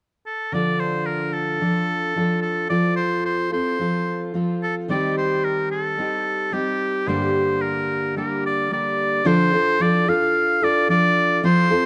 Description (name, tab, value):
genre	pop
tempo	110 BPM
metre	4/4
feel	straight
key	unclear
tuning	A4 = 439 Hz
part	clear oboe	melody	0.3-11.9 s	G4 to F5	-24 LUFS	equal	plate reverb
part	fingerpicked steel-string acoustic guitar	accompaniment	0.5-11.9 s	G2 to A4	-24 LUFS	equal	none
room	light reverb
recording	dark, warm production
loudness	-21 LUFS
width	mono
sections	0.5-9.3 A section; 9.3-11.9 B section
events	none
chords	0.0 N.C.; 0.5 Dm; 2.7 F; 4.9 Cm/Eb; 7.1 Gm; 9.3 Dm